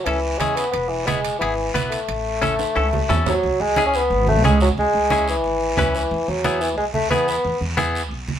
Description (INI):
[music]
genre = latin, cumbia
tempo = 179 BPM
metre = 4/4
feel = straight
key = unclear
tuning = A4 = 440 Hz
[part]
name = mellow bassoon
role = melody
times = 0.0-7.6 s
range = E3 to C#4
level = -20 LUFS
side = left 1 dB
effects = none
[part]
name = direct-recorded clean electric guitar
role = accompaniment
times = 0.1-8.0 s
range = B3 to B4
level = -23 LUFS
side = left 2 dB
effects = none
[part]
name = upright bass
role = bass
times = 0.1-8.4 s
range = E1 to E2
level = -24 LUFS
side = right 1 dB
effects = none
[part]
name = congas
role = percussion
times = 0.1-8.4 s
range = none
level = -27 LUFS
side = right 4 dB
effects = none
[part]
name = guiro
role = percussion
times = 0.1-8.4 s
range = none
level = -32 LUFS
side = right 3 dB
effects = none
[part]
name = timbales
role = percussion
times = 0.1-3.3 s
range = none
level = -32 LUFS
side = right 7 dB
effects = none
[sound]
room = moderate studio reverb, RT60 0.8 s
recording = minimal, uncompressed stereo recording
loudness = -18 LUFS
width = side -9 dB against mid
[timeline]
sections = 0.0-3.4 A section; 3.4-8.4 B section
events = drum fill 2.6-3.4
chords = 0.0 Aadd9; 0.7 E; 2.1 A; 3.4 C#m; 6.1 E